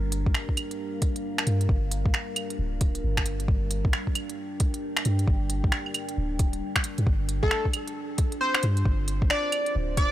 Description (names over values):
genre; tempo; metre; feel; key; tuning
future garage; 134 BPM; 4/4; swing 63% on 16ths; G minor; A4 = 438 Hz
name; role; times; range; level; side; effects
deep dark ambient pad; sustained chords; 0.0-10.1 s; G3 to G5; -34 LUFS; equal; chorus, built-in reverb, vintage 12-bit sampler grit, sidechain pumping
soft 808-style bass; bass; 0.0-10.1 s; D1 to G2; -26 LUFS; equal; sidechain pumping
organic electronic drum kit; drums; 0.1-10.1 s; claves, finger snaps, hi-hat; -29 LUFS; right 1 dB; small room ambience
electronic kick drum; drums; 0.3-10.1 s; none; -25 LUFS; equal; small room ambience
plucky unison lead; melody; 7.4-10.1 s; A4 to D5; -28 LUFS; equal; analog delay
room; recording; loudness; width
little or no reverb; dry, gritty hardware recording; -24 LUFS; side -13 dB against mid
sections
0.0-10.1 A section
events
none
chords
0.0 Gm7; 7.1 Dm7